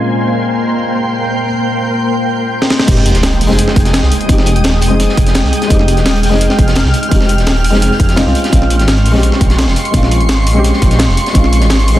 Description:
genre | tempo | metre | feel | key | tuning
liquid drum and bass | 170 BPM | 4/4 | straight | F minor | A4 = 440 Hz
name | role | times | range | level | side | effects
felt-muted upright piano | accompaniment | 0.0-12.0 s | Bb2 to Ab4 | -17 LUFS | left 1 dB | tape echo
shimmering ambient pad | sustained chords | 0.0-12.0 s | Ab3 to F6 | -17 LUFS | equal | chorus, built-in reverb, sidechain pumping
breakbeat sampler-style drum kit | drums | 2.6-12.0 s | crash cymbal, hi-hat, snare drum | -17 LUFS | equal | none
dark detuned saw bass | bass | 2.9-12.0 s | Eb1 to C2 | -13 LUFS | equal | none
crunchy breakbeat drum kit | drums | 2.9-12.0 s | hi-hat, snare drum | -23 LUFS | equal | high-pass filter on hats, high-pass filter on snare, high-pass filter on room
electronic kick drum | drums | 2.9-11.4 s | none | -11 LUFS | equal | none
sub drop | sound effects | 2.9-4.3 s | none | -19 LUFS | right 1 dB | none
room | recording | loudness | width
light reverb, studio ambience | dense, heavily limited modern master, low-pass filter | -9 LUFS | side -14 dB against mid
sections
0.0-2.9 A section; 2.9-12.0 B section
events
filter sweep 0.0-2.9; drum fill 2.6; drop 2.9-12.0; impact 2.9-4.3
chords
0.0 Bbm9; 2.9 Fm9; 8.4 Bbm9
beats
| 0.06 0.41 0.76 1.12 | 1.47 1.82 2.17 2.53 | 2.88 3.23 3.59 3.94 | 4.29 4.64 5.00 5.35 | 5.70 6.06 6.41 6.76 | 7.12 7.47 7.82 8.17 | 8.53 8.88 9.23 9.59 | 9.94 10.29 10.64 11.00 | 11.35 11.70

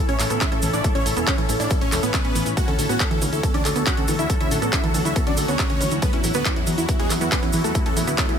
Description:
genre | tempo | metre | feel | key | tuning
uplifting trance | 139 BPM | 4/4 | straight | A major | A4 = 440 Hz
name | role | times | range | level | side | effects
supersaw chords | melody | 0.0-8.4 s | G#3 to F#5 | -26 LUFS | equal | sidechain pumping, tape echo
shimmering ambient pad | sustained chords | 0.0-8.4 s | C#3 to F#4 | -28 LUFS | left 1 dB | chorus, built-in reverb, sidechain pumping
wide unison pluck | arpeggios | 0.0-8.3 s | A2 to A4 | -28 LUFS | moving between left 1 dB and right 7 dB | auto-pan, sidechain pumping, tape echo
solid FM bass | bass | 0.1-8.4 s | E1 to E2 | -27 LUFS | equal | sidechain pumping
big-room dance drum kit | drums | 0.1-8.4 s | handclaps, hi-hat | -27 LUFS | equal | overdrive
tube shaker | percussion | 0.2-8.3 s | none | -31 LUFS | right 4 dB | none
electronic kick drum | drums | 0.4-8.3 s | none | -23 LUFS | equal | overdrive
room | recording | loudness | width
little or no reverb | none | -18 LUFS | side -8 dB against mid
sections
0.0-8.4 A section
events
none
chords
0.0 A; 2.6 D; 6.0 Esus2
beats
0.41 | 0.84 1.27 1.71 2.14 | 2.57 3.00 3.43 3.87 | 4.30 4.73 5.16 5.59 | 6.02 6.46 6.89 7.32 | 7.75 8.18

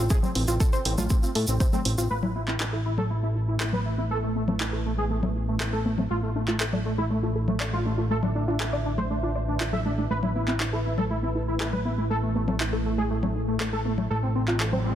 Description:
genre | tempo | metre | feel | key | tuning
melodic techno | 120 BPM | 4/4 | straight | A minor | A4 = 440 Hz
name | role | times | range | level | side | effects
wide unison lead | melody | 0.0-14.9 s | A3 to E5 | -30 LUFS | equal | sidechain pumping, digital delay
soft round pluck | arpeggios | 0.0-14.8 s | A3 to D5 | -32 LUFS | equal | chorus, sidechain pumping, digital delay
fat analog bass | bass | 0.0-14.9 s | A1 to A2 | -28 LUFS | equal | sidechain pumping
electronic kick drum | drums | 0.1-1.7 s | none | -22 LUFS | equal | none
tube shaker | percussion | 0.1-2.1 s | none | -35 LUFS | right 2 dB | none
punchy analog drum machine | drums | 0.2-14.8 s | congas, handclaps, hi-hat | -30 LUFS | left 2 dB | sidechain pumping on hats, sidechain pumping on perc
deep dark ambient pad | sustained chords | 3.4-14.9 s | A3 to F5 | -35 LUFS | right 1 dB | chorus, built-in reverb, sidechain pumping
riser | sound effects | 14.4-14.9 s | none | -36 LUFS | equal | none
room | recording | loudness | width
light reverb | dense, heavily limited modern master | -24 LUFS | side -10 dB against mid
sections
0.0-2.1 A section; 2.1-14.9 B section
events
riser 14.4-14.9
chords
0.0 F/A; 2.1 Amadd9; 6.1 Dm/A; 10.1 Amadd9; 14.1 F/A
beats
| 0.10 0.60 1.10 1.60 | 2.10 2.60 3.10 3.60 | 4.10 4.60 5.10 5.60 | 6.10 6.60 7.10 7.60 | 8.10 8.60 9.10 9.60 | 10.10 10.60 11.10 11.60 | 12.10 12.60 13.10 13.60 | 14.10 14.60

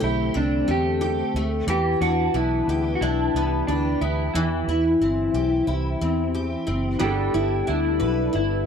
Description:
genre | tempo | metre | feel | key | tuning
indie pop, bedroom pop | 90 BPM | 4/4 | swing 55% on 16ths | G major | A4 = 438 Hz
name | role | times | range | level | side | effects
electric guitar through a small old amp | melody | 0.0-8.7 s | D4 to G4 | -25 LUFS | left 1 dB | wide subtle chorus, analog delay
picked steel-string acoustic guitar | accompaniment | 0.0-8.7 s | D3 to B4 | -24 LUFS | left 2 dB | ensemble chorus, warbly pitch drift
vintage muted fingered electric bass | bass | 0.0-8.7 s | F#1 to E2 | -26 LUFS | right 1 dB | none
chorused retro synth keys | accompaniment | 7.0-8.7 s | B3 to A4 | -30 LUFS | right 7 dB | cassette tape
room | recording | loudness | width
light reverb, small room ambience | none | -20 LUFS | side -7 dB against mid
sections
0.0-8.7 A section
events
none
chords
0.0 D7sus4; 1.7 Em7; 4.3 C; 7.0 G6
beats
0.35 1.02 | 1.68 2.35 3.02 3.68 | 4.35 5.01 5.68 6.35 | 7.01 7.68 8.35

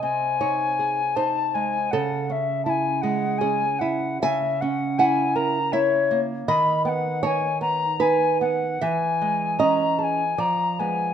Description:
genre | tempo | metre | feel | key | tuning
romantic duo for recorder and classical guitar | 78 BPM | 3/4 | uneven beats, rubato | C# minor, B major from 4.2 s | A4 = 440 Hz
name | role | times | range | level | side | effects
mellow hollow tenor recorder | melody | 0.0-11.1 s | C#5 to B5 | -23 LUFS | left 5 dB | none
nylon-string guitar | accompaniment | 0.0-11.1 s | B#2 to G#5 | -24 LUFS | right 4 dB | none
room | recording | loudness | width
moderate recital hall reverb, RT60 1.5 s | minimal, uncompressed stereo recording | -20 LUFS | side -8 dB against mid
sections
0.0-11.1 A section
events
none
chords
0.0 G#/B#; 1.9 C#m; 4.2 F#7/C#; 6.5 B/D#; 8.8 C#m/E; 10.4 Fdim7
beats
0.41 1.16 | 1.92 2.65 3.40 | 4.22 4.99 5.72 | 6.46 7.22 8.00 | 8.82 9.59 10.39

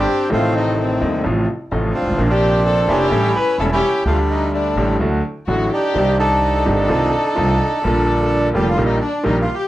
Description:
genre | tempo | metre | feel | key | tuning
tango | 128 BPM | 4/4 | rubato | unclear | A4 = 441 Hz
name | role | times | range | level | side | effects
bandoneon | melody | 0.0-9.7 s | Eb3 to B4 | -19 LUFS | right 1 dB | none
rich violin | second line | 0.0-9.7 s | C4 to B4 | -25 LUFS | left 6 dB | none
bright concert grand piano | accompaniment | 0.0-9.4 s | Eb1 to D5 | -20 LUFS | equal | none
upright bass | bass | 0.0-9.4 s | E1 to Eb2 | -21 LUFS | right 1 dB | none
room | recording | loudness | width
wet club reverb, RT60 0.5 s | worn, warbling old tape, cassette tape, warbly pitch drift | -15 LUFS | side -15 dB against mid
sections
0.0-9.7 A section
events
none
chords
0.3 Adim; 1.2 F/A; 2.2 Bbadd9; 3.1 A7; 4.1 Dsus4; 5.0 D; 6.0 Cmadd9; 6.9 F7/C; 7.8 Bb6; 8.8 Eb/Bb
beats
| 0.31 0.78 1.24 1.71 | 2.18 2.64 3.11 3.58 | 4.05 4.52 5.00 5.48 | 5.95 6.43 6.90 7.37 | 7.83 8.30 8.77 9.23

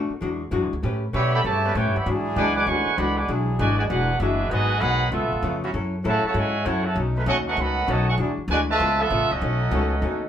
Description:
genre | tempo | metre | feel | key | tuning
jazz, big band swing | 196 BPM | 4/4 | swing 63% on 8ths | E major | A4 = 439 Hz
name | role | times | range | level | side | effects
archtop guitar, miked and amplified | accompaniment | 0.0-10.2 s | G#2 to B4 | -28 LUFS | left 3 dB | none
upright bass | bass | 0.0-10.3 s | C#1 to B2 | -25 LUFS | equal | none
clear trumpet section | melody | 1.1-10.3 s | B3 to D6 | -24 LUFS | right 2 dB | none
muted trombone section | second line | 1.2-10.3 s | B2 to G4 | -30 LUFS | right 2 dB | none
bright trombone section | sustained chords | 1.3-10.2 s | D#3 to B4 | -31 LUFS | right 1 dB | none
room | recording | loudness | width
wet studio ambience, RT60 0.5 s | band playing live in one room | -20 LUFS | side -9 dB against mid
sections
0.0-10.3 A section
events
none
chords
0.2 E9; 0.8 A9; 2.1 E9; 4.5 G#m7; 5.1 C#7alt; 5.7 F#m7; 7.0 B9; 8.2 E9; 8.8 C#7alt; 9.4 B9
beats
0.22 0.52 | 0.83 1.14 1.44 1.75 | 2.06 2.37 2.67 2.98 | 3.29 3.59 3.90 4.21 | 4.51 4.82 5.13 5.43 | 5.74 6.05 6.35 6.66 | 6.96 7.27 7.58 7.88 | 8.19 8.50 8.80 9.11 | 9.41 9.72 10.03

